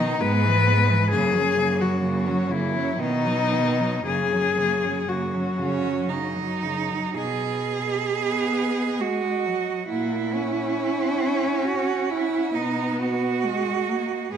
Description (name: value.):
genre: classical, lyrical piece for cello ensemble.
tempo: 53-69 BPM.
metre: 3/4.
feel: rubato.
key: B major.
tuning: A4 = 440 Hz.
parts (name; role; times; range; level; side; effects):
warm cello; melody; 0.0-14.4 s; D#4 to F#5; -26 LUFS; left 5 dB; none.
rich cello; second line; 0.0-14.4 s; G#3 to G#4; -26 LUFS; right 7 dB; none.
rich cello; accompaniment; 0.0-14.4 s; C#3 to C#4; -28 LUFS; left 1 dB; none.
rich cello; bass; 0.0-14.4 s; F#2 to B2; -27 LUFS; right 2 dB; none.
room: wet recital hall reverb, RT60 1.2 s.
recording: none.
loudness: -21 LUFS.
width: side -8 dB against mid.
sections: 0.0-7.1 A section; 7.1-14.4 B section.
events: none.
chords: 0.2 E/G#; 1.1 F#; 3.0 B; 4.1 F#; 7.1 B; 9.9 F#7/A#; 12.5 B.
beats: 0.22 | 1.12 2.03 2.99 | 4.06 5.08 6.08 | 7.15 8.08 8.98 | 9.88 10.76 11.65 | 12.54 13.44 14.32.